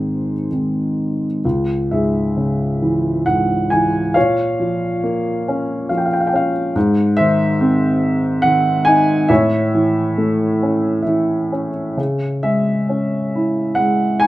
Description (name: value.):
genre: classical, lyrical solo piano.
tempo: 64-71 BPM.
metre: 3/4.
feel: rubato.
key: C# harmonic minor.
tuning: A4 = 438 Hz.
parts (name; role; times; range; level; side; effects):
dark grand piano; solo; 0.0-14.3 s; C#2 to G#5; -15 LUFS; equal; none.
room: light reverb.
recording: minimal, uncompressed stereo recording.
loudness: -15 LUFS.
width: side -16 dB against mid.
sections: 0.0-1.4 A section; 1.4-14.3 B section.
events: none.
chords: 0.0 G#; 1.4 C#m; 4.2 A#m; 6.8 G#; 9.3 A; 12.0 C#m.